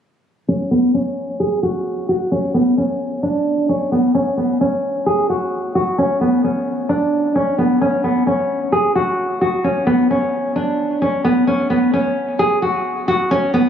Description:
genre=hip hop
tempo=131 BPM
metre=4/4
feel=half-time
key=unclear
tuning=A4 = 440 Hz
part: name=nylon-string guitar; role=melody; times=0.5-13.7 s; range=B3 to G#4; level=-15 LUFS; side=equal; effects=low-pass filter, ping-pong delay
room=moderate huge ambient reverb, RT60 4.4 s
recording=recorded on a phone in the room, club reverb, compression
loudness=-15 LUFS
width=side -8 dB against mid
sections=0.5-13.7 A section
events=filter sweep on nylon-string guitar 0.5-13.7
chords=none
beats=| 0.48 0.94 1.40 1.86 | 2.32 2.77 3.23 3.69 | 4.15 4.61 5.06 5.52 | 5.98 6.44 6.90 7.35 | 7.81 8.27 8.73 9.19 | 9.64 10.10 10.56 11.02 | 11.48 11.93 12.39 12.85 | 13.31

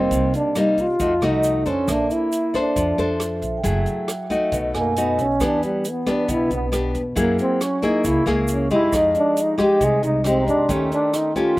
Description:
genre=bossa nova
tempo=136 BPM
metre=4/4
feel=straight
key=unclear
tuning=A4 = 441 Hz
part: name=breathy trombone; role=melody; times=0.0-11.6 s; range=G3 to Ab4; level=-21 LUFS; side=right 1 dB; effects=none
part: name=nylon-string guitar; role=accompaniment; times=0.0-11.6 s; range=B2 to C5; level=-21 LUFS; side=left 1 dB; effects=none
part: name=upright bass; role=bass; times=0.0-11.6 s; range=F#1 to F#2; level=-26 LUFS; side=equal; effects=none
part: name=vintage drum kit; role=drums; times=0.1-11.6 s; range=hi-hat, kick drum, rim click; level=-31 LUFS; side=right 1 dB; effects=none
part: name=egg shaker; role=percussion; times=0.1-11.6 s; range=none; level=-36 LUFS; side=right 6 dB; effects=none
part: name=vibraphone with soft mallets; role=accompaniment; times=1.9-11.6 s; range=E5 to C#6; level=-30 LUFS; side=right 4 dB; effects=slapback echo
room=little or no reverb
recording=recorded outdoors, with no room sound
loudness=-18 LUFS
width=side -18 dB against mid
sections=0.0-11.6 A section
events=trombone solo 0.0-11.6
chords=0.1 Cm7; 1.0 F7b9; 1.9 Bbmaj9; 3.6 F#m9; 4.5 B7; 5.4 Em7; 7.2 F#9; 8.9 Fm9; 10.7 Eb7#11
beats=| 0.12 0.56 1.00 1.44 | 1.88 2.32 2.76 3.20 | 3.65 4.08 4.53 4.97 | 5.41 5.85 6.29 6.73 | 7.17 7.61 8.05 8.49 | 8.93 9.37 9.81 10.25 | 10.69 11.13 11.57

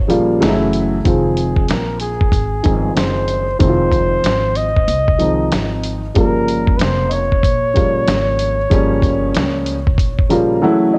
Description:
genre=hip hop, jazz-hop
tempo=94 BPM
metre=4/4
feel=swing 63% on 16ths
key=F minor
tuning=A4 = 441 Hz
part: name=breathy flugelhorn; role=melody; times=0.0-10.6 s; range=Ab4 to Eb5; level=-22 LUFS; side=equal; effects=cassette tape, analog delay
part: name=upright bass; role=bass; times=0.0-10.6 s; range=F1 to Db2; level=-24 LUFS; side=equal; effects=none
part: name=dark upright piano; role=accompaniment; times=0.1-11.0 s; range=Db3 to Bb5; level=-19 LUFS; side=equal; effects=cassette tape
part: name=dusty soul sampler-style drum kit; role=drums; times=0.1-10.5 s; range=hi-hat, kick drum, snare drum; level=-20 LUFS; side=equal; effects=cassette tape
room=small room ambience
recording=home recording on cassette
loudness=-16 LUFS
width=mono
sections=0.0-1.1 A section; 1.1-11.0 A section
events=upright piano fill 10.0-11.0; silent gap 10.6-11.0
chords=0.4 Gbm7; 1.1 Fm7; 6.2 Gm7b5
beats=0.41 | 1.05 1.69 2.33 2.97 | 3.61 4.24 4.88 5.52 | 6.16 6.80 7.44 8.07 | 8.71 9.35 9.99 10.63

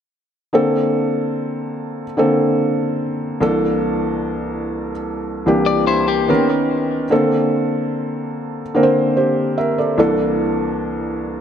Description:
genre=R&B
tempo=73 BPM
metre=4/4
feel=straight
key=Bb lydian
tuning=A4 = 443 Hz
part: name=felt-muted upright piano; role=accompaniment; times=0.5-11.4 s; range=C2 to E5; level=-16 LUFS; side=equal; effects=none
part: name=clean electric guitar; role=arpeggios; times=5.7-6.5 s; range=Bb3 to D5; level=-21 LUFS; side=left 7 dB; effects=dub echo
room=moderate echo chamber reverb, RT60 2.5 s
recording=echo-heavy mix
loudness=-16 LUFS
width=side -8 dB against mid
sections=0.5-11.4 A section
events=felt piano fill 11.2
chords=0.5 Bbmaj9; 3.4 C13; 6.3 Bmaj9; 7.1 Bbmaj9; 10.0 C13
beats=| 0.53 1.35 2.17 2.99 | 3.81 4.64 5.46 6.28 | 7.10 7.92 8.75 9.57 | 10.39 11.21

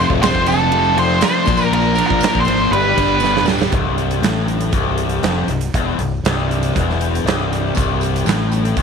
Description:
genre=classic rock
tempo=119 BPM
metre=4/4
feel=straight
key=C major from 3.7 s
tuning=A4 = 440 Hz
part: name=octave-fuzz lead guitar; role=melody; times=0.0-3.4 s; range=A4 to C5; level=-17 LUFS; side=right 1 dB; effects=distortion, tape echo
part: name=crunchy overdriven guitar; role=riff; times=0.0-8.8 s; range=C2 to G4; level=-23 LUFS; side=right 11 dB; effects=none
part: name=thick fuzz guitar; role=riff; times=0.0-3.7 s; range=F2 to Bb3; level=-21 LUFS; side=left 1 dB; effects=distortion
part: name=tight distorted guitar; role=riff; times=0.0-8.8 s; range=C2 to Bb4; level=-22 LUFS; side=left 15 dB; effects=distortion
part: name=growling fingered electric bass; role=bass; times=0.0-8.8 s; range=C1 to Bb1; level=-21 LUFS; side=left 1 dB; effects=overdrive
part: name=mellow reed electric piano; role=accompaniment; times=0.1-3.6 s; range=F4 to D5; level=-26 LUFS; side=left 14 dB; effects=fast tremolo
part: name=huge arena drum kit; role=drums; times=0.1-8.8 s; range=hi-hat, kick drum, ride cymbal, snare drum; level=-22 LUFS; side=right 4 dB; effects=none
part: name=tambourine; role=percussion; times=0.1-3.7, 7.7-8.8 s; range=none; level=-35 LUFS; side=right 16 dB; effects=none
room=little or no reverb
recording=1960s-style stereo with parts hard left and right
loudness=-14 LUFS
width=side -6 dB against mid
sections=0.0-3.7 A section; 3.7-8.8 B section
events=drum fill 3.2-3.7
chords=0.0 F; 1.5 Bb; 2.7 G; 3.7 C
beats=0.22 0.72 1.22 | 1.72 2.23 2.73 3.23 | 3.73 4.24 4.74 5.24 | 5.74 6.25 6.75 7.25 | 7.75 8.26 8.76

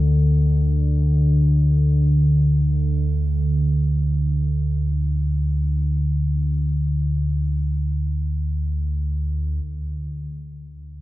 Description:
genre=ambient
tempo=free time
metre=none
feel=none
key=unclear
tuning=A4 = 441 Hz
part: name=deep rumbling drone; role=solo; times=0.0-11.0 s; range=D2 to D3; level=-18 LUFS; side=equal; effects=built-in reverb
room=wet cathedral reverb, RT60 6.2 s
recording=dark, warm production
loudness=-18 LUFS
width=side -16 dB against mid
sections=0.0-9.6 A section; 9.6-11.0 B section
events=none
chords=none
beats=free time

